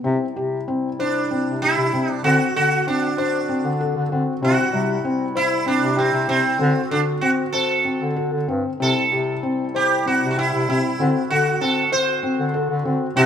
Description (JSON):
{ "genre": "contemporary instrumental, chamber music in an uneven meter", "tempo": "192 BPM (eighths)", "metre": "7/8", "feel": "straight", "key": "C lydian", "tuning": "A4 = 440 Hz", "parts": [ { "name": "dark woodwind section", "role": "sustained chords", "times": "0.0-13.3 s", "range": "C3 to F#4", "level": "-30 LUFS", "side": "right 2 dB", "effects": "none" }, { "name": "felt-muted upright piano", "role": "arpeggios", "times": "0.0-13.3 s", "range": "G3 to C5", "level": "-23 LUFS", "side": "left 4 dB", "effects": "none" }, { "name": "warm bass clarinet", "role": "bass", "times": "0.0-13.3 s", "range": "G2 to D3", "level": "-23 LUFS", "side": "left 1 dB", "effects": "none" }, { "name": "sitar", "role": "melody", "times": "1.0-13.3 s", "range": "C4 to C5", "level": "-21 LUFS", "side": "right 4 dB", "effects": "none" } ], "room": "moderate recital hall reverb, RT60 1.4 s", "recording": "none", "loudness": "-18 LUFS", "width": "side -8 dB against mid", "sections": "0.0-13.3 A section", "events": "none", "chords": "0.0 C; 2.2 D7; 4.4 C; 6.6 D7; 8.8 C; 11.0 D7", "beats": "| 0.04 0.35 0.67 0.99 1.30 1.62 1.93 | 2.24 2.56 2.87 3.18 3.49 3.80 4.11 | 4.43 4.74 5.05 5.36 5.67 5.98 6.29 | 6.60 6.92 7.23 7.54 7.86 8.17 8.49 | 8.81 9.12 9.44 9.75 10.07 10.38 10.69 | 11.00 11.31 11.62 11.93 12.24 12.55 12.86 | 13.16" }